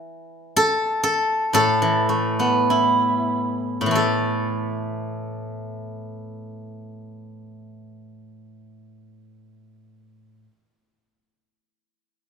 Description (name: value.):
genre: chinese traditional, Chinese solo plucked strings.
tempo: 47-65 BPM.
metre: 4/4.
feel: rubato.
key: unclear.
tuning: A4 = 440 Hz.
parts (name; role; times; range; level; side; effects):
steel-string zither; solo; 0.0-10.5 s; A2 to G5; -20 LUFS; equal; none.
room: moderate recital hall reverb, RT60 1.4 s.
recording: minimal, uncompressed stereo recording.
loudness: -19 LUFS.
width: side -6 dB against mid.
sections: 0.0-3.9 A section; 3.9-8.8 B section.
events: slowing down 0.0-3.9.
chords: none.